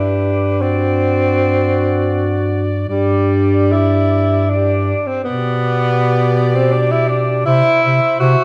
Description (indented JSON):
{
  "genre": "classical, lyrical piece for single-reed quartet",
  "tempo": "80 BPM",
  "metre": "3/4",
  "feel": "rubato",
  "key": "G major",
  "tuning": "A4 = 440 Hz",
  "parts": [
    { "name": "warm soprano saxophone", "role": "melody", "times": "0.0-8.4 s", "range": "B4 to E5", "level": "-27 LUFS", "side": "equal", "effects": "none" },
    { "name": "clear alto saxophone", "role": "second line", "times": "0.0-8.4 s", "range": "F#4 to C5", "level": "-25 LUFS", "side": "equal", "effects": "none" },
    { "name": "warm tenor saxophone", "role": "accompaniment", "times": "0.0-8.4 s", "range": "G3 to F#4", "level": "-19 LUFS", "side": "equal", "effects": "none" },
    { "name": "mellow bass clarinet", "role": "bass", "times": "0.0-8.4 s", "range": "G2 to C3", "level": "-18 LUFS", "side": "equal", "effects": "none" }
  ],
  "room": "wet recital hall reverb, RT60 1.7 s",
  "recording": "none",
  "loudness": "-15 LUFS",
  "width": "mono",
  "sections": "0.0-8.4 A section",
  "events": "none",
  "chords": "0.0 G; 0.6 D7/G; 2.9 G5; 5.2 G/B; 7.5 C",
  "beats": "| 0.60 1.36 2.12 | 2.88 3.73 4.50 | 5.25 5.98 6.72 | 7.46 8.20"
}